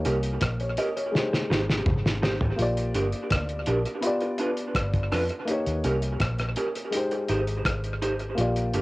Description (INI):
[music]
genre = lovers rock reggae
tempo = 83 BPM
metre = 4/4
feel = straight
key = unclear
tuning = A4 = 440 Hz
[part]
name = dark concert grand piano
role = accompaniment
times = 0.0-8.8 s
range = Ab3 to Eb5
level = -30 LUFS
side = left 1 dB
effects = none
[part]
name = vintage muted fingered electric bass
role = bass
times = 0.0-8.8 s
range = G1 to F2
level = -28 LUFS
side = equal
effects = none
[part]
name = cloth-damped thuddy drum kit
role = drums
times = 0.0-8.8 s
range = hi-hat, kick drum, rim click, snare drum, toms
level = -28 LUFS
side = equal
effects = tape echo
[part]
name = electric guitar through a small old amp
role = stabs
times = 0.1-8.8 s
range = Db4 to C5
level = -30 LUFS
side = right 2 dB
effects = spring reverb, tape echo
[sound]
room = moderate booth ambience, RT60 0.2 s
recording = home recording on cassette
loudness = -24 LUFS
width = side -20 dB against mid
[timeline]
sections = 0.0-8.8 A section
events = drum fill 1.1-2.6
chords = 0.0 Eb7; 1.1 Abmaj7; 2.6 Bb6; 4.0 G7; 5.5 Eb7; 6.9 Abmaj7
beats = 0.42 1.14 1.86 | 2.59 3.31 4.03 4.76 | 5.48 6.20 6.93 7.65 | 8.38